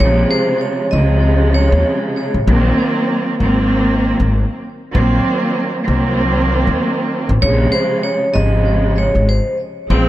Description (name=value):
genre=hip hop, boom-bap hip-hop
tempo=97 BPM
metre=4/4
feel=swing 57% on 16ths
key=Bb minor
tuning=A4 = 439 Hz
part: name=vibraphone with hard mallets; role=melody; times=0.0-2.0, 7.4-9.6 s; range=C5 to Eb5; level=-19 LUFS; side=right 1 dB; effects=high-pass filter, low-pass filter, digital delay
part: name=warm studio string section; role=accompaniment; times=0.0-10.1 s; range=C3 to C4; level=-16 LUFS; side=right 1 dB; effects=cassette tape, high-pass filter, low-pass filter
part: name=upright bass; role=bass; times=0.0-10.1 s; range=Ab1 to Eb2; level=-14 LUFS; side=left 1 dB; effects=none
room=small room ambience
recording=none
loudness=-13 LUFS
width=side -14 dB against mid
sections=0.0-10.1 A section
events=none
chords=0.0 Bbm9 (rootless); 2.5 Ab7; 7.4 Bbm9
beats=0.61 1.23 1.85 | 2.47 3.09 3.71 4.32 | 4.94 5.56 6.18 6.80 | 7.42 8.04 8.65 9.27 | 9.89